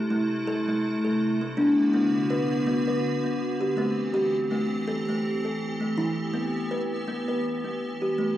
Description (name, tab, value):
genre	world meditative, meditative tuned percussion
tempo	82 BPM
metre	3/4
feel	swing 55% on 16ths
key	E minor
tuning	A4 = 435 Hz
part	icy glass pad	sustained chords	0.0-8.4 s	C3 to G4	-28 LUFS	right 1 dB	chorus, built-in reverb
part	kalimba	arpeggios	0.0-8.4 s	E3 to B4	-26 LUFS	left 1 dB	none
room	wet echo chamber reverb, RT60 2.4 s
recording	worn, warbling old tape, cassette tape, warbly pitch drift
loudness	-24 LUFS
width	side -12 dB against mid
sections	0.0-8.4 A section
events	none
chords	0.0 Am; 1.6 Bm; 3.8 C; 6.0 Em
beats	0.10 0.84 | 1.57 2.31 3.04 | 3.77 4.51 5.24 | 5.97 6.71 7.44 | 8.18